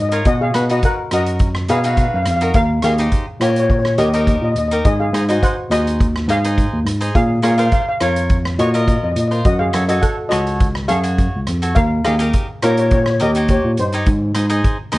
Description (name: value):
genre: calypso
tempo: 104 BPM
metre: 4/4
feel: straight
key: unclear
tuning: A4 = 435 Hz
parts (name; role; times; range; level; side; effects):
- steel pan; melody; 0.0-15.0 s; Eb4 to Gb5; -19 LUFS; left 1 dB; none
- overdriven tine electric piano; bass; 0.0-15.0 s; Db2 to Cb3; -18 LUFS; equal; none
- cavaquinho; accompaniment; 0.1-15.0 s; Eb4 to Eb5; -23 LUFS; equal; none
- street-band drum kit; drums; 0.1-15.0 s; hi-hat, kick drum, rim click; -20 LUFS; equal; none
room: light reverb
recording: worn, warbling old tape, cassette tape, warbly pitch drift, nothing above 11.0 kHz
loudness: -14 LUFS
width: side -18 dB against mid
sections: 0.0-15.0 A section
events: none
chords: 0.3 Cbmaj7; 2.5 Eb; 4.8 Ab; 7.2 Bbm; 9.5 Gbm6; 11.8 Eb7; 14.1 Ab